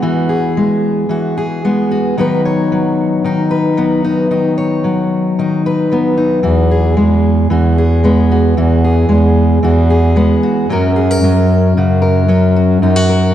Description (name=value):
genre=acoustic folk duo or small band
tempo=113 BPM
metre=4/4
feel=straight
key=B major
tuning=A4 = 440 Hz
part: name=fingerpicked steel-string acoustic guitar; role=accompaniment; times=0.0-13.3 s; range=F#2 to C#5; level=-12 LUFS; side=left 1 dB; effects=none
part: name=mellow bass clarinet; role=bass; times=6.4-13.3 s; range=E2 to F#2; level=-12 LUFS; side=right 1 dB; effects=none
room=moderate concert hall reverb, RT60 2.4 s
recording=dark, warm production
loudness=-10 LUFS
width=side -11 dB against mid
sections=0.0-13.3 A section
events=none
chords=0.0 Eadd9; 2.2 B/D#; 6.4 Eadd9; 10.7 F#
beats=| 0.03 0.56 1.10 1.63 | 2.16 2.70 3.23 3.76 | 4.30 4.83 5.36 5.89 | 6.43 6.96 7.49 8.02 | 8.56 9.09 9.62 10.15 | 10.68 11.21 11.75 12.28 | 12.81 13.34